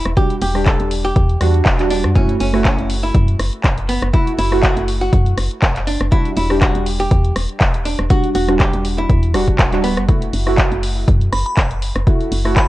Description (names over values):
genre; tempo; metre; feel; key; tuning
deep house; 121 BPM; 4/4; swing 54% on 16ths; E minor; A4 = 440 Hz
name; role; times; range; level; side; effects
archtop guitar, miked and amplified; melody; 0.0-10.0 s; B3 to A4; -23 LUFS; equal; none
deep mellow chord stab; stabs; 0.0-12.7 s; G3 to G4; -21 LUFS; right 2 dB; chorus
woody FM bass; bass; 0.1-12.7 s; D1 to F#2; -19 LUFS; equal; tube saturation, sidechain pumping
deep house drum kit; drums; 0.1-12.7 s; handclaps, hi-hat, rim click; -22 LUFS; left 1 dB; vintage 12-bit sampler grit
electronic kick drum; drums; 0.2-12.7 s; none; -15 LUFS; equal; vintage 12-bit sampler grit
glassy synth bell; melody; 11.3-12.7 s; B5; -23 LUFS; right 1 dB; chorus
room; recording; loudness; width
little or no reverb; cassette tape; -13 LUFS; side -16 dB against mid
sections
0.0-12.7 A section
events
none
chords
0.0 Em9; 2.2 F#m7; 6.1 Em9; 10.1 F#m7